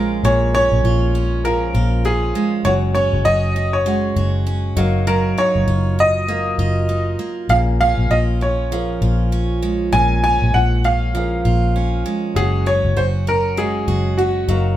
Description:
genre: acoustic pop.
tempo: 99 BPM.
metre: 4/4.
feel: swing 60% on 16ths.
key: Bb minor.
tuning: A4 = 440 Hz.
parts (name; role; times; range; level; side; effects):
bright upright piano; melody; 0.0-14.6 s; Gb4 to Ab5; -19 LUFS; equal; none.
picked steel-string acoustic guitar; accompaniment; 0.0-14.8 s; Bb2 to Gb4; -23 LUFS; right 4 dB; none.
warm concert grand piano; accompaniment; 0.0-14.8 s; Db4 to Ab5; -29 LUFS; left 4 dB; none.
vintage muted fingered electric bass; bass; 0.0-14.8 s; Gb1 to Bb1; -18 LUFS; equal; none.
room: light reverb.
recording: band playing live in one room.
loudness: -15 LUFS.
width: side -12 dB against mid.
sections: 0.0-14.8 A section.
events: none.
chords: 0.0 Bbm7; 2.7 Gbsus2; 4.8 Ebmadd9/Gb; 7.5 Bbm7; 12.4 Gbsus2.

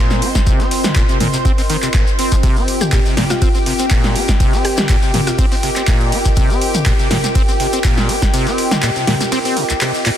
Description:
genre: acid house.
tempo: 122 BPM.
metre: 4/4.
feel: swing 53% on 16ths.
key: C minor.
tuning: A4 = 439 Hz.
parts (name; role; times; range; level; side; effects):
lush unison pad; sustained chords; 0.0-10.2 s; G4 to C5; -23 LUFS; left 2 dB; chorus, sidechain pumping.
acid bass, saw; riff; 0.0-10.1 s; C2 to C4; -21 LUFS; equal; analog chorus, ping-pong delay.
warbly tape-like pad; texture; 0.0-10.2 s; C4 to G5; -23 LUFS; right 1 dB; chorus, built-in reverb, phaser, sidechain pumping.
punchy analog drum machine; drums; 0.1-10.2 s; handclaps, hi-hat, ride cymbal, snare drum, toms; -20 LUFS; equal; overdrive.
shekere; percussion; 0.1-10.0 s; none; -29 LUFS; left 4 dB; none.
dusty soul sampler-style drum kit; drums; 0.2-10.2 s; hi-hat, snare drum; -32 LUFS; left 1 dB; none.
electronic kick drum; drums; 0.4-8.3 s; none; -15 LUFS; equal; overdrive.
mallet-like synth pluck; melody; 2.8-5.6 s; F4 to G4; -25 LUFS; equal; chorus, ping-pong delay.
room: light reverb, digital ambience.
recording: dense, heavily limited modern master.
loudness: -13 LUFS.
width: side -10 dB against mid.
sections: 0.0-10.2 A section.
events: kick drops out 8.3-10.2.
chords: 0.0 Cm.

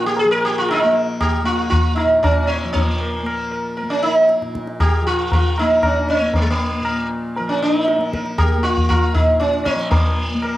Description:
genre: indian classical, Hindustani.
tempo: 117 BPM.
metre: 7/4.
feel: straight.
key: Bb raga bhimpalasi.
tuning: A4 = 442 Hz.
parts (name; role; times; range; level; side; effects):
sitar; melody; 0.0-10.6 s; Ab3 to Bb4; -18 LUFS; right 1 dB; cassette tape.
tanpura; drone; 0.0-10.6 s; Bb2 to Bb3; -26 LUFS; left 1 dB; cassette tape.
tabla; percussion; 0.0-10.6 s; none; -20 LUFS; left 1 dB; none.
room: moderate spring reverb, RT60 1.7 s, small room ambience.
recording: home recording on cassette.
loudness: -15 LUFS.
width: side -15 dB against mid.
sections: 0.0-10.6 A section.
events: none.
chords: none.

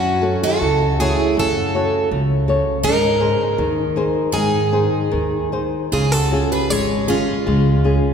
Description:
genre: fado-style ballad.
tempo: 74-83 BPM.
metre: 2/4.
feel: rubato.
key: unclear.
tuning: A4 = 440 Hz.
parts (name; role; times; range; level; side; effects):
picked plugged-in twelve-string acoustic guitar; melody; 0.0-8.1 s; E#4 to C#5; -21 LUFS; right 1 dB; none.
picked twelve-string acoustic guitar; second line; 0.0-8.1 s; C#4 to G#4; -25 LUFS; right 3 dB; none.
flamenco guitar; accompaniment; 0.0-8.1 s; C#3 to C#5; -21 LUFS; left 2 dB; none.
upright bass; bass; 0.0-8.0 s; G#1 to G#2; -21 LUFS; equal; none.
room: wet church reverb, RT60 3.6 s.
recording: recorded in a church or concert hall.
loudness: -16 LUFS.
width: side -7 dB against mid.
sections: 0.0-8.1 A section.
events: none.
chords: 0.0 F#m; 2.8 G#; 5.9 C#.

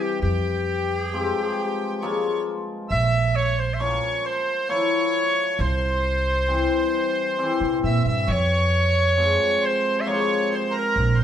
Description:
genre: klezmer.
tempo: 67 BPM.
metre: 3/4.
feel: straight.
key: unclear.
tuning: A4 = 443 Hz.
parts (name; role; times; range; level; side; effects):
bright clarinet; melody; 0.0-11.2 s; G4 to E5; -23 LUFS; equal; none.
accordion; second line; 0.0-11.2 s; G4 to E5; -29 LUFS; right 2 dB; none.
cimbalom; accompaniment; 0.0-11.0 s; C3 to E4; -27 LUFS; left 4 dB; none.
upright bass; bass; 0.2-11.2 s; Bb1 to C3; -23 LUFS; right 1 dB; none.
room: wet studio reverb, RT60 0.8 s.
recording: band playing live in one room.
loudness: -20 LUFS.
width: side -9 dB against mid.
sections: 0.0-8.3 A section; 8.3-11.2 B section.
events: none.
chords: 0.2 Fm; 2.9 Bbm; 5.6 C; 8.3 Fm.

